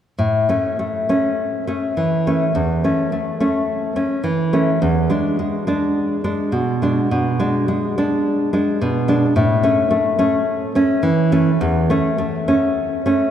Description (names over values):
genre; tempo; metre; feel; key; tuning
classical; 52 BPM; 4/4; rubato; A major; A4 = 437 Hz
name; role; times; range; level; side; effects
nylon-string guitar; accompaniment; 0.2-13.3 s; E2 to D4; -16 LUFS; equal; none
room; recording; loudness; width
wet church reverb, RT60 3.8 s; recorded in a church or concert hall; -16 LUFS; side -9 dB against mid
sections
0.2-13.3 A section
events
none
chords
0.2 A; 4.8 E7 (rootless); 9.4 A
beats
| 0.18 1.37 2.54 3.67 | 4.80 5.96 7.11 8.25 | 9.35 10.46 11.61 12.76